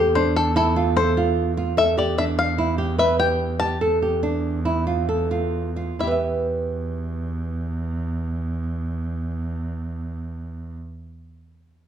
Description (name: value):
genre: contemporary instrumental, contemporary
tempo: 131-149 BPM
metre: 5/4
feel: straight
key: E phrygian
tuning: A4 = 440 Hz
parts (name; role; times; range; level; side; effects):
- bluegrass banjo; melody; 0.0-10.8 s; A4 to A5; -23 LUFS; left 4 dB; none
- flamenco guitar; arpeggios; 0.0-10.9 s; D4 to E5; -22 LUFS; right 2 dB; none
- bright double bass; bass; 0.0-10.8 s; E2; -25 LUFS; right 2 dB; none
room: moderate recital hall reverb, RT60 1.4 s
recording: minimal, uncompressed stereo recording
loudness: -20 LUFS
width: side -9 dB against mid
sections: 0.0-6.0 A section; 6.0-10.5 B section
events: slowing down 2.6-6.0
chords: 0.0 F/E; 1.8 Em; 3.8 F/E; 6.0 Em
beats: 0.16 0.57 0.97 1.37 | 1.77 2.18 2.58 2.99 3.40 | 3.81 4.23 4.66 5.09 5.54 | 6.00 6.46 6.91 7.36 7.81 | 8.27 8.71 9.17 9.62 10.08